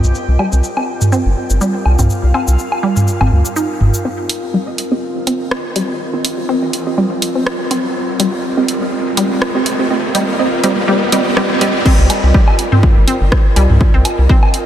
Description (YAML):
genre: minimal techno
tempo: 123 BPM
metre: 4/4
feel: swing 55% on 16ths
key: C minor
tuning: A4 = 441 Hz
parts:
  - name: rubbery square bass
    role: bass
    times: 0.0-3.9, 12.0-14.3 s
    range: G1 to D2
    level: -12 LUFS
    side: equal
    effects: sidechain pumping
  - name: house drum kit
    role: drums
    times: 0.0-14.6 s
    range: cabasa, crash cymbal, hi-hat, rim click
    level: -22 LUFS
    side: right 1 dB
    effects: overdrive, low-pass filter on hats, low-pass filter on perc, low-pass filter on snare, low-pass filter on cymbals, low-pass filter on room
  - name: airy breathy pad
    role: texture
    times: 0.0-14.7 s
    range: C4 to F5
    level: -22 LUFS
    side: equal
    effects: chorus, sidechain pumping
  - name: bubbling stepped-filter texture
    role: texture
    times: 0.0-4.1 s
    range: G4 to G5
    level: -33 LUFS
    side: left 1 dB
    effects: chorus, built-in reverb, sidechain pumping
  - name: resonant blip pluck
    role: riff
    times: 0.4-14.4 s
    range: G3 to Eb4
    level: -19 LUFS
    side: left 1 dB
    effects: chorus, sidechain pumping, tape echo
  - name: electronic woodblock and toms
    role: percussion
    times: 0.4-3.9, 12.1-14.5 s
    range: none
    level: -17 LUFS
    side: right 1 dB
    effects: none
  - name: riser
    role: sound effects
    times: 5.2-11.9 s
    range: none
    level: -24 LUFS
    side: right 1 dB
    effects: none
  - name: filtered dub chord stab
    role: stabs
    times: 4.7-11.7 s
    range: C4 to Eb5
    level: -21 LUFS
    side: right 4 dB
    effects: lush chorus, diffuse ambient delay
  - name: electronic kick drum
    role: drums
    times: 11.9-14.4 s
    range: none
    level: -11 LUFS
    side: equal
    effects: overdrive
room: moderate huge ambient reverb, RT60 6.5 s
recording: dreamy mix soaked in reverb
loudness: -12 LUFS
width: side -11 dB against mid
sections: 0.0-4.1 A section; 4.1-11.9 B section; 11.9-14.7 C section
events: filter sweep on synth arpeggio sound 0.0-4.1, 4.1-11.9; build-up 4.1-11.9; filter sweep on synth stab 4.1-11.9; riser 5.2-11.9; drop 11.9-14.7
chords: 0.0 Cm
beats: | 0.15 0.64 1.12 1.61 | 2.10 2.59 3.08 3.56 | 4.05 4.54 5.03 5.51 | 6.00 6.49 6.98 7.46 | 7.95 8.44 8.93 9.42 | 9.90 10.39 10.88 11.37 | 11.86 12.34 12.83 13.32 | 13.81 14.29